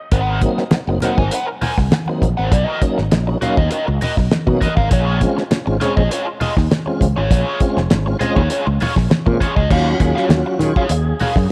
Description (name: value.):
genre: funk.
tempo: 100 BPM.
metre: 4/4.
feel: straight.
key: Eb dorian.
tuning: A4 = 441 Hz.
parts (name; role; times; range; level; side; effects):
crunchy overdriven guitar; accompaniment; 0.1-11.4 s; F4 to Ab5; -25 LUFS; equal; wah.
fretless electric bass; bass; 0.1-11.5 s; F1 to Eb3; -20 LUFS; equal; analog chorus.
cloth-damped thuddy drum kit; drums; 0.1-11.5 s; crash cymbal, hi-hat, kick drum, snare drum; -20 LUFS; equal; none.
congas; percussion; 0.1-11.4 s; none; -27 LUFS; equal; none.
tonewheel organ; stabs; 0.4-11.5 s; Gb3 to Ab4; -24 LUFS; equal; overdrive, chorus vibrato, slow rotary speaker.
room: light reverb.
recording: none.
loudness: -17 LUFS.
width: mono.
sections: 0.1-9.7 A section; 9.7-11.5 B section.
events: tonewheel organ solo 9.7-11.5.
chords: 0.1 Ab9; 2.5 Bmaj7; 4.9 Bbm7; 9.7 Ebm9.